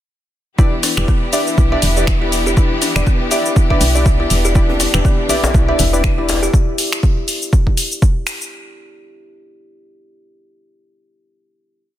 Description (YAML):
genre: afro house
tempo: 121 BPM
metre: 4/4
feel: swing 57% on 16ths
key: E minor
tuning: A4 = 440 Hz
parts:
  - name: clear symphonic string section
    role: sustained chords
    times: 0.6-6.5 s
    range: E3 to G4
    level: -24 LUFS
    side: left 1 dB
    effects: sidechain pumping
  - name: kalimba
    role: arpeggios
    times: 0.6-6.5 s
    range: B3 to E5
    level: -22 LUFS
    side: left 1 dB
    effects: sidechain pumping, tape echo
  - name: warm analog keys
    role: stabs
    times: 0.6-6.5 s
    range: D4 to D5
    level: -22 LUFS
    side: left 1 dB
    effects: chorus, sidechain pumping, tape echo
  - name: deep house drum kit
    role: drums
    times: 0.6-8.5 s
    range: finger snaps, hi-hat, shaker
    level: -20 LUFS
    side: left 2 dB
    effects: soft clipping on snare
  - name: electronic kick drum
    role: drums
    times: 0.6-8.1 s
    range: none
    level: -13 LUFS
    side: equal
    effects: none
  - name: woody FM bass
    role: bass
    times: 1.0-6.5 s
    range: E1 to B1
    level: -18 LUFS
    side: equal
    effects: tube saturation, sidechain pumping
  - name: djembe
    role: percussion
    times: 4.7-6.4 s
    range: none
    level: -23 LUFS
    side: left 2 dB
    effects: none
room: digital ambience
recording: dense, heavily limited modern master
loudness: -13 LUFS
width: side -12 dB against mid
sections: 0.6-8.5 drop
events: drop 0.6-8.5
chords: 0.6 Em7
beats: | 0.58 1.08 1.58 2.07 | 2.57 3.06 3.56 4.06 | 4.55 5.05 5.54 6.04 | 6.54 7.03 7.53 8.02